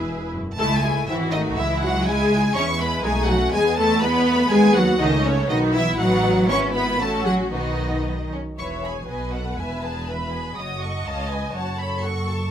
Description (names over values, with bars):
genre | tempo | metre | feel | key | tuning
quick classical-period movement for string orchestra | 121 BPM | 2/4 | rubato | C# minor, E major from 4.5 s | A4 = 441 Hz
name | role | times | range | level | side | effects
warm studio violin section | melody | 0.0-12.5 s | C#5 to D#6 | -26 LUFS | left 1 dB | none
clear symphonic violin section | second line | 0.0-12.5 s | G#3 to A5 | -28 LUFS | equal | none
warm symphonic viola section | accompaniment | 0.0-12.5 s | C#4 to D#5 | -25 LUFS | left 2 dB | none
rich symphonic double bass section | bass | 0.0-12.5 s | E1 to E2 | -27 LUFS | right 1 dB | none
rich symphonic cello section | bass | 0.1-12.5 s | C#2 to C#4 | -24 LUFS | right 1 dB | none
room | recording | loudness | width
light reverb | none | -19 LUFS | side -9 dB against mid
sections
0.6-8.6 A section; 8.6-12.5 B section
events
none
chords
0.0 E; 0.6 C#m; 1.1 G#7(no3); 1.6 C#m; 2.6 E; 3.0 B7; 3.5 E; 4.5 B/D#; 5.0 A/C#; 5.5 B; 6.0 B7/A; 6.5 E/G#; 7.0 F#m/A; 7.5 B; 8.6 E; 9.1 B7; 9.6 E; 10.6 F#m; 11.1 C#7; 11.5 F#m